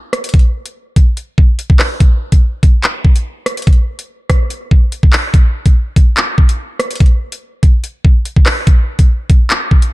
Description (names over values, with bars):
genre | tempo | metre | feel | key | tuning
hip hop | 144 BPM | 4/4 | half-time | none | none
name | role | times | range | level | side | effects
drill drum kit | drums | 0.1-9.9 s | handclaps, hi-hat, kick drum, rim click | -9 LUFS | equal | none
room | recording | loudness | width
little or no reverb | dark, warm production | -10 LUFS | side -20 dB against mid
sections
0.0-9.9 A section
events
none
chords
none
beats
| 0.34 0.75 1.17 1.59 | 2.00 2.42 2.84 3.25 | 3.67 4.09 4.50 4.92 | 5.34 5.75 6.17 6.59 | 7.00 7.42 7.84 8.25 | 8.67 9.09 9.50